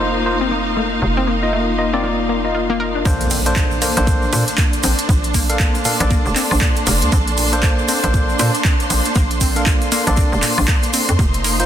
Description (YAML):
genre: deep house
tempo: 118 BPM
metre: 4/4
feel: swing 60% on 16ths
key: Bb major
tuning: A4 = 440 Hz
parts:
  - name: warbly tape-like pad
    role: sustained chords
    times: 0.0-11.7 s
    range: Bb3 to C5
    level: -28 LUFS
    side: equal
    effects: chorus, built-in reverb, sidechain pumping
  - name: analog pluck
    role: arpeggios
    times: 0.0-11.5 s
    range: Bb2 to Bb4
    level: -26 LUFS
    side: left 4 dB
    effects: chorus, vintage 12-bit sampler grit, sidechain pumping, dub echo
  - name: tine electric piano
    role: stabs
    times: 0.0-11.7 s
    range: Bb3 to F5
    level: -22 LUFS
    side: left 1 dB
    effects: ping-pong delay
  - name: hollow knocking FM bass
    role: bass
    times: 0.0-11.7 s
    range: F1 to Bb2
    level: -21 LUFS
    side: equal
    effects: sidechain pumping
  - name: warm symphonic string section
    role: texture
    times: 0.0-11.7 s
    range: Bb3 to C6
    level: -23 LUFS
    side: equal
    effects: sidechain pumping
  - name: deep house drum kit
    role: drums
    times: 3.1-11.7 s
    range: handclaps, hi-hat, ride cymbal, woodblock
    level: -22 LUFS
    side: right 1 dB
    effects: studio reverb
  - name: electronic kick drum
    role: drums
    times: 3.1-11.3 s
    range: none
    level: -17 LUFS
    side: equal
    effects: studio reverb
  - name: egg shaker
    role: percussion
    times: 3.1-11.7 s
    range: none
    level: -27 LUFS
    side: right 3 dB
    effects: none
  - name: impact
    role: sound effects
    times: 3.1-5.1 s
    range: none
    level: -28 LUFS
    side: right 1 dB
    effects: none
room: light reverb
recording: dense, heavily limited modern master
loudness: -14 LUFS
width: side -10 dB against mid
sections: 0.0-3.1 A section; 3.1-11.7 B section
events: filter sweep on ambient pad 0.0-3.1; filter sweep on synth arpeggio sound 0.0-3.1; drop 3.1-11.7; impact 3.1-5.1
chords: 0.0 F7sus4; 3.1 Bbmaj9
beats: 0.00 0.51 | 1.02 1.53 2.04 2.55 | 3.06 3.56 4.07 4.58 | 5.09 5.60 6.11 6.61 | 7.12 7.63 8.14 8.65 | 9.16 9.66 10.17 10.68 | 11.19